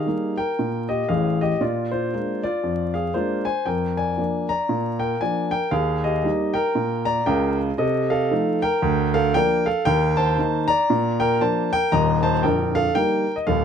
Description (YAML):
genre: jazz, stride piano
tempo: 116 BPM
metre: 4/4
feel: swing 61% on 8ths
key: Eb major, Bb major from 7.8 s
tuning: A4 = 439 Hz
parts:
  - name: warm grand piano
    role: solo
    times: 0.0-13.6 s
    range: Bb0 to Bb5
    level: -19 LUFS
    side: equal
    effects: none
room: light reverb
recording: close, detailed microphones, vinyl crackle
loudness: -19 LUFS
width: side -7 dB against mid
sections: 0.0-13.6 A section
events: none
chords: 0.0 Eb; 1.6 Bb9; 3.7 Bb7/F; 5.7 Eb; 7.8 F7/C; 8.8 Bb/D; 9.9 Eb5; 10.9 Bb; 11.9 Eb